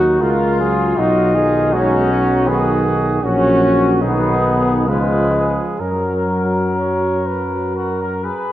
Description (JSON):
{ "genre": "classical, hymn-like piece for brass band", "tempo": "60-80 BPM", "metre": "3/4", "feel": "rubato", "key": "F# major", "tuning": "A4 = 441 Hz", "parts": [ { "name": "mellow trumpet section", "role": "melody", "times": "0.0-8.5 s", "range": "D#4 to B4", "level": "-25 LUFS", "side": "left 4 dB", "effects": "none" }, { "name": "warm flugelhorn", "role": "second line", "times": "0.0-8.5 s", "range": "D#4 to C#5", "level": "-21 LUFS", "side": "right 3 dB", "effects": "none" }, { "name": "bright trombone section", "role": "accompaniment", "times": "0.0-8.2 s", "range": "F#3 to F#4", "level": "-18 LUFS", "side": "left 1 dB", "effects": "none" }, { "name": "warm euphonium", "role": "accompaniment", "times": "0.0-8.3 s", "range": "D#3 to G#3", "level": "-24 LUFS", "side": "right 1 dB", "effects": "none" }, { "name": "mellow tuba", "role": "bass", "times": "0.0-8.3 s", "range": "A#1 to F#2", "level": "-20 LUFS", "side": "equal", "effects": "none" } ], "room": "wet scoring stage reverb, RT60 1.7 s", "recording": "worn, warbling old tape, cassette tape, warbly pitch drift", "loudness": "-14 LUFS", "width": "side -13 dB against mid", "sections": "0.0-8.5 A section", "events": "none", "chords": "0.0 D#m; 1.0 B; 3.2 F#/A#; 4.0 G#m/B; 4.9 C#7; 5.8 F#" }